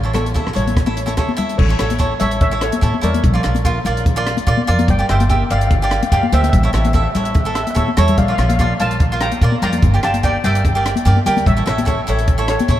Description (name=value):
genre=calypso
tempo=146 BPM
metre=4/4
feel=swing 54% on 16ths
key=unclear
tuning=A4 = 440 Hz
part: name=steel pan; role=melody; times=0.0-12.8 s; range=A4 to Bb5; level=-23 LUFS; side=left 2 dB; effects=none
part: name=cavaquinho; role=accompaniment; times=0.0-12.8 s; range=E4 to F5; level=-21 LUFS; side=right 2 dB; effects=none
part: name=upright bass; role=bass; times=0.0-12.8 s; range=G1 to Bb2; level=-18 LUFS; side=equal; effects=none
part: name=compact cocktail drum kit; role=drums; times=0.1-12.8 s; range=crash cymbal, hi-hat, kick drum, rim click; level=-19 LUFS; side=equal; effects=none
part: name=congas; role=percussion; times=0.2-12.7 s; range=none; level=-22 LUFS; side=left 3 dB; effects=none
room=moderate cathedral reverb, RT60 5.4 s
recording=in a vast, echoing space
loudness=-14 LUFS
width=side -12 dB against mid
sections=0.0-1.6 A section; 1.6-12.8 B section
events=drum fill 7.7-8.2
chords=0.0 A; 3.2 Bb; 4.9 Gm; 6.5 A; 8.2 Bb; 9.8 Gm; 11.5 A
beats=0.35 0.77 1.18 | 1.59 2.00 2.42 2.83 | 3.24 3.65 4.06 4.47 | 4.88 5.30 5.71 6.12 | 6.53 6.94 7.35 7.76 | 8.18 8.59 9.00 9.41 | 9.82 10.23 10.64 11.05 | 11.46 11.87 12.28 12.69